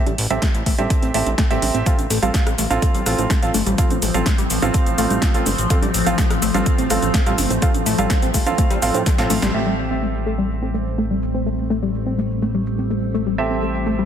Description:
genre	progressive house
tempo	125 BPM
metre	4/4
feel	straight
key	A minor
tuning	A4 = 439 Hz
part	clear grand piano	stabs	0.0-14.1 s	C4 to F5	-23 LUFS	right 4 dB	vintage 12-bit sampler grit, sidechain pumping, low-pass filter, ping-pong delay
part	tight sequenced synth	arpeggios	0.1-14.1 s	G3 to C4	-24 LUFS	left 2 dB	chorus, cassette tape, sidechain pumping, ping-pong delay
part	fat analog bass	bass	0.1-14.1 s	G1 to A2	-24 LUFS	equal	sidechain pumping
part	deep house drum kit	drums	0.1-14.1 s	cabasa, hi-hat, rim click, snare drum	-25 LUFS	equal	overdrive, low-pass filter on hats, studio ambience, low-pass filter on snare, low-pass filter on perc
part	congas	percussion	0.1-9.4 s	none	-31 LUFS	right 5 dB	none
part	electronic kick drum	drums	0.4-9.2 s	none	-18 LUFS	equal	overdrive, studio ambience
part	evolving wavetable pad	sustained chords	2.7-14.1 s	F3 to C4	-25 LUFS	left 2 dB	chorus, built-in reverb, phaser, sidechain pumping
room	light reverb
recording	dense, heavily limited modern master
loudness	-16 LUFS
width	side -9 dB against mid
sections	0.0-9.5 A section; 9.5-14.1 B section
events	filter sweep on synth arpeggio sound 0.0-9.5, 9.5-14.1; drum fill 9.1-9.5; band accent 9.4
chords	0.0 Am7; 1.9 F; 9.5 Am7

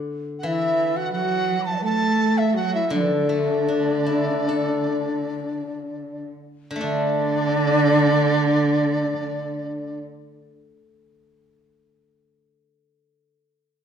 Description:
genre	chinese traditional, Chinese chamber ensemble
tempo	59-89 BPM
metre	4/4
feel	rubato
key	D gong mode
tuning	A4 = 440 Hz
part	steel-string zither	accompaniment	0.0-13.3 s	D3 to A4	-27 LUFS	left 3 dB	none
part	large dizi	melody	0.4-10.0 s	D5 to A5	-25 LUFS	right 1 dB	none
part	warm cello	second line	0.4-10.0 s	D3 to A3	-24 LUFS	right 5 dB	none
part	breathy xiao	second line	0.5-10.0 s	D4 to D6	-26 LUFS	left 5 dB	none
room	wet recital hall reverb, RT60 1.4 s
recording	dark, warm production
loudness	-19 LUFS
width	side -8 dB against mid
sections	0.0-6.8 A section; 6.8-10.8 B section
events	slowing down 0.4-6.8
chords	none

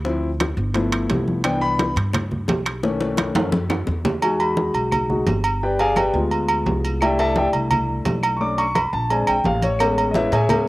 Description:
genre	Afro-Cuban jazz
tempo	172 BPM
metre	4/4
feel	straight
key	unclear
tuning	A4 = 442 Hz
part	warm concert grand piano	accompaniment	0.0-10.7 s	D#3 to D6	-21 LUFS	left 1 dB	cassette tape
part	upright bass	bass	0.0-10.7 s	G1 to A2	-25 LUFS	equal	none
part	bongos and cowbell	percussion	0.0-4.1, 9.8-10.7 s	none	-28 LUFS	left 3 dB	none
part	congas	percussion	0.1-10.7 s	none	-26 LUFS	equal	none
part	claves	percussion	0.4-10.7 s	none	-36 LUFS	left 3 dB	none
part	timbales and agogo bells	percussion	0.4-10.7 s	none	-24 LUFS	right 3 dB	none
room	moderate spring reverb, RT60 1.4 s, small room ambience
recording	home recording on cassette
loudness	-18 LUFS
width	side -18 dB against mid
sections	0.0-4.2 A section; 4.2-10.7 A section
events	grand piano solo 0.0-10.7; drum fill 2.8-4.2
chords	0.1 Dm9; 0.7 G13; 1.4 Cmaj9; 2.8 B7; 4.2 Emaj7; 5.6 G7b9; 7.0 C69; 8.4 Bm7; 9.1 A#9; 9.8 Amaj9

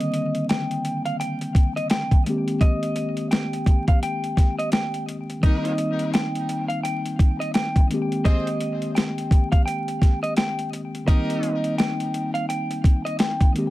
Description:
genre	hip hop, boom-bap hip-hop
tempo	85 BPM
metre	4/4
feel	swing 60% on 16ths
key	C minor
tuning	A4 = 440 Hz
part	clean electric guitar	melody	0.0-13.5 s	Eb5 to G5	-28 LUFS	equal	wide subtle chorus, high-pass filter, low-pass filter, ping-pong delay
part	mellow tine electric piano	accompaniment	0.0-13.7 s	C2 to G4	-26 LUFS	left 1 dB	slow stereo tremolo, cassette tape, high-pass filter, low-pass filter
part	boom bap sampler-style drum kit	drums	0.0-13.7 s	hi-hat, kick drum, snare drum	-20 LUFS	equal	none
part	warm horn section	stabs	5.4-11.6 s	C4 to C5	-35 LUFS	equal	high-pass filter, low-pass filter, plate reverb, ping-pong delay
room	light reverb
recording	vinyl crackle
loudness	-20 LUFS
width	side -17 dB against mid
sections	0.0-13.7 A section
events	none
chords	0.0 Cm7; 2.3 Abmaj7/C; 5.4 Cm7; 7.9 Abmaj7/C; 11.1 Cm7

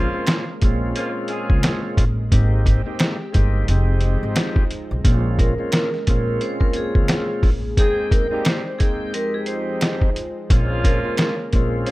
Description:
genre	hip hop, boom-bap hip-hop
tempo	88 BPM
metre	4/4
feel	swing 59% on 16ths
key	unclear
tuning	A4 = 440 Hz
part	bright tonewheel organ	accompaniment	0.0-11.9 s	F2 to G5	-27 LUFS	equal	overdrive, slow rotary speaker, cassette tape, high-pass filter, low-pass filter, plate reverb
part	lush unison pad	sustained chords	0.0-11.9 s	Db3 to G5	-32 LUFS	equal	chorus, high-pass filter, low-pass filter, plate reverb
part	dark horn section	stabs	0.0-1.8, 7.8-11.9 s	F3 to Ab4	-28 LUFS	equal	high-pass filter, low-pass filter, slapback echo, plate reverb
part	upright bass	bass	0.0-11.8 s	F1 to Db2	-20 LUFS	equal	none
part	trip hop sampler-style drum kit	drums	0.3-11.9 s	hi-hat, kick drum, snare drum	-19 LUFS	equal	none
part	finger snap	percussion	0.3-11.4 s	none	-32 LUFS	right 2 dB	none
part	vibraphone with hard mallets	melody	5.4-11.9 s	Ab4 to C5	-25 LUFS	equal	high-pass filter, low-pass filter, slapback echo, plate reverb
room	light reverb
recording	rough home demo mix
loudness	-17 LUFS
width	side -19 dB against mid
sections	0.0-11.9 A section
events	break 0.0-5.0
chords	0.0 Bbm7; 2.3 Abmaj7; 3.7 Fm7; 5.0 Bbm7; 7.8 Abmaj7; 9.1 Fm7; 10.5 Bbm7

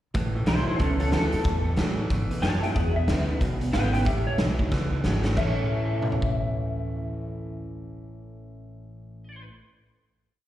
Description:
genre	rockabilly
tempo	184 BPM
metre	4/4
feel	swing 62% on 8ths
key	A major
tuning	A4 = 443 Hz
part	picked steel-string acoustic guitar	accompaniment	0.1-9.5 s	E2 to E4	-33 LUFS	left 2 dB	slapback echo
part	electric guitar through a small old amp	riff	0.1-9.5 s	E2 to C#5	-33 LUFS	right 3 dB	slapback echo
part	upright bass	bass	0.1-9.4 s	G#1 to A2	-29 LUFS	equal	none
part	raw garage drum kit	drums	0.1-6.3 s	crash cymbal, hi-hat, kick drum, snare drum, toms	-28 LUFS	equal	none
part	electric guitar through a small old amp	melody	0.5-9.4 s	C#4 to A5	-30 LUFS	equal	analog chorus, slapback echo, tape echo
room	studio ambience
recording	live gig heard through the venue's PA, recital hall reverb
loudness	-23 LUFS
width	side -13 dB against mid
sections	0.1-5.4 A section; 5.4-8.0 final chord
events	drum fill 4.7-5.4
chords	0.1 A; 2.8 E7; 4.1 A

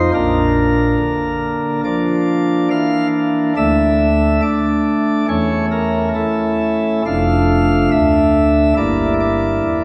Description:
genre	classical, chorale-style piece for pipe organ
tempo	70 BPM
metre	4/4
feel	rubato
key	D minor from 3.6 s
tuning	A4 = 440 Hz
part	pipe organ, sparkling flutes	solo	0.0-9.8 s	F1 to F5	-16 LUFS	equal	none
room	wet church reverb, RT60 2.5 s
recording	recorded in a church or concert hall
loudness	-16 LUFS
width	mono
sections	0.0-9.8 A section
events	none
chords	0.1 Bb; 3.6 D5; 5.3 A/E; 7.1 Dm/F; 8.8 Edim/G

